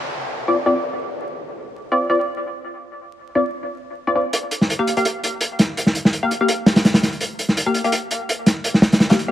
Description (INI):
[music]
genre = drum and bass, jungle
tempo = 167 BPM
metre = 4/4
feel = swing 54% on 16ths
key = D minor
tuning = A4 = 437 Hz
[part]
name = downlifter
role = sound effects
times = 0.0-1.5 s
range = none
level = -29 LUFS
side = left 1 dB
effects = none
[part]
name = filtered dub chord stab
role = stabs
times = 0.5-9.3 s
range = Bb3 to F5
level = -21 LUFS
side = left 1 dB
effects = lush chorus, cassette tape, dub echo
[part]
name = crunchy breakbeat drum kit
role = drums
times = 4.3-9.3 s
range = hi-hat, snare drum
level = -16 LUFS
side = equal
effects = none
[sound]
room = light reverb, studio reverb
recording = vinyl crackle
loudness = -17 LUFS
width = side -12 dB against mid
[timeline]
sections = 0.0-9.3 A section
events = none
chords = 0.0 Dm7; 4.3 Gm7